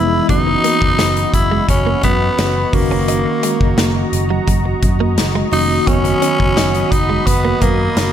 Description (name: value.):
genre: 1980s-style pop.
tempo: 86 BPM.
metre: 4/4.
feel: straight.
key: unclear.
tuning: A4 = 440 Hz.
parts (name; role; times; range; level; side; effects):
growling tenor saxophone; melody; 0.0-8.1 s; A#3 to E4; -18 LUFS; left 1 dB; tape echo.
tine electric piano; accompaniment; 0.0-8.1 s; D#3 to F#4; -21 LUFS; equal; medium stereo tremolo.
warm analog pad; sustained chords; 0.0-8.1 s; F#4 to D#6; -24 LUFS; equal; wide subtle chorus.
direct-recorded clean electric guitar; riff; 0.0-8.1 s; F#3 to D#4; -24 LUFS; right 6 dB; analog chorus, tape echo.
vintage muted picked electric bass; bass; 0.0-8.1 s; E#1 to F#2; -19 LUFS; equal; none.
big rock drum kit; drums; 0.3-8.1 s; hi-hat, kick drum, snare drum; -18 LUFS; equal; none.
room: light reverb, small room ambience.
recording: none.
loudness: -13 LUFS.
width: side -10 dB against mid.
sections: 0.0-8.1 A section.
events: none.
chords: 0.3 F#7sus4; 2.7 D#m7/F#; 5.9 B/F#.